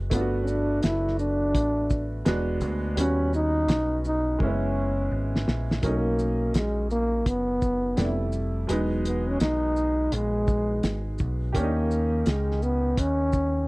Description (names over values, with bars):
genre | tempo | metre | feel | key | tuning
hip hop, jazz-hop | 84 BPM | 4/4 | swing 65% on 16ths | B major | A4 = 438 Hz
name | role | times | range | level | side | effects
warm upright piano | accompaniment | 0.0-13.7 s | C3 to A#4 | -31 LUFS | right 1 dB | none
deep dub picked electric bass | bass | 0.0-13.7 s | E1 to D#2 | -28 LUFS | equal | none
breathy trombone | melody | 0.1-13.7 s | G#3 to E4 | -26 LUFS | equal | none
cloth-damped thuddy drum kit | drums | 0.1-13.5 s | hi-hat, kick drum, shaker, snare drum | -26 LUFS | equal | none
room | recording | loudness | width
little or no reverb | dry, close 1970s-style studio recording | -23 LUFS | side -23 dB against mid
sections
0.0-5.8 A section; 5.8-13.7 B section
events
drum fill 4.4-5.8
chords
0.1 Gmaj9; 2.3 E9; 3.0 D#7alt; 4.4 F#9sus4; 5.8 Bmaj7; 8.0 Fmaj9; 8.7 Emaj9; 11.5 D#7